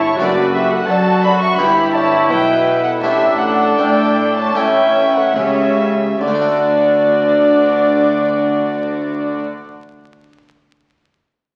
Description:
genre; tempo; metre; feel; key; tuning
classical, baroque-style concerto movement with solo episodes; 70-88 BPM; 4/4; straight; D major; A4 = 440 Hz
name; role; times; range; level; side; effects
mellow hollow baroque flute; melody; 0.0-9.4 s; F#4 to E5; -20 LUFS; equal; none
warm chamber violin section; melody; 0.0-9.4 s; D5 to C#6; -22 LUFS; equal; none
rich chamber violin section; second line; 0.0-9.4 s; F#4 to E5; -25 LUFS; equal; none
dark chamber viola section; accompaniment; 0.0-9.4 s; C#4 to F#4; -21 LUFS; equal; none
harpsichord; accompaniment; 0.0-9.7 s; F#2 to D5; -27 LUFS; equal; none
rich chamber double bass section; bass; 0.0-9.4 s; F#1 to A2; -26 LUFS; equal; none
warm chamber cello section; bass; 0.0-9.4 s; F#2 to A3; -28 LUFS; equal; none
room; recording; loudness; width
wet recital hall reverb, RT60 1.4 s; very old 78 rpm record, vinyl crackle; -15 LUFS; mono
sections
0.0-6.2 A section; 6.2-9.6 B section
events
slowing down 0.0-6.2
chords
0.2 D/F#; 1.6 Em/G; 3.0 Asus4; 4.6 A7; 6.2 D

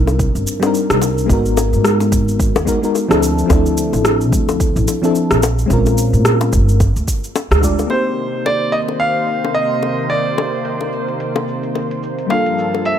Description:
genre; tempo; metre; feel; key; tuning
sunset chillout; 109 BPM; 4/4; swing 58% on 16ths; C minor from 7.9 s; A4 = 438 Hz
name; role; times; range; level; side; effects
mellow FM electric piano; accompaniment; 0.0-13.0 s; F3 to D5; -19 LUFS; left 2 dB; chorus, auto-pan, tape echo
upright bass; bass; 0.0-7.8 s; G1 to Bb2; -16 LUFS; right 1 dB; none
deep house drum kit; drums; 0.1-13.0 s; cabasa, hi-hat, rim click; -20 LUFS; right 1 dB; overdrive, low-pass filter on perc, low-pass filter on snare, low-pass filter on hats, low-pass filter on room
bongos; percussion; 0.1-12.8 s; none; -22 LUFS; left 6 dB; none
electronic kick drum; drums; 0.2-7.8 s; none; -18 LUFS; right 1 dB; overdrive
bright grand piano; melody; 7.9-13.0 s; C5 to F5; -19 LUFS; right 1 dB; tape echo
lush unison pad; sustained chords; 7.9-13.0 s; G2 to C5; -21 LUFS; right 1 dB; chorus, vintage 12-bit sampler grit
room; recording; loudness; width
light reverb; none; -14 LUFS; side -9 dB against mid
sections
0.0-7.9 A section; 7.9-13.0 B section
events
band accent 7.5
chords
0.0 Cm9; 1.3 Abm9; 3.2 Dm9; 5.4 Bbm9; 6.8 G5; 7.9 Cm9; 12.3 Gm9

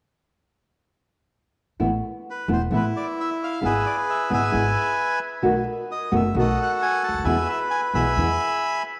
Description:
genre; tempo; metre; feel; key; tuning
tango; 132 BPM; 4/4; rubato; unclear; A4 = 440 Hz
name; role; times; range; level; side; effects
nylon-string guitar; accompaniment; 1.8-8.3 s; B2 to F#4; -27 LUFS; equal; none
upright bass; bass; 1.8-8.4 s; E1 to E2; -29 LUFS; equal; none
bandoneon; melody; 2.3-8.8 s; E4 to B5; -26 LUFS; equal; tape echo
room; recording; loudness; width
wet spring reverb, RT60 1.9 s, small room ambience; none; -23 LUFS; mono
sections
1.8-9.0 A section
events
none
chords
1.8 Asus2; 3.6 E/G#; 5.4 B7; 7.3 E

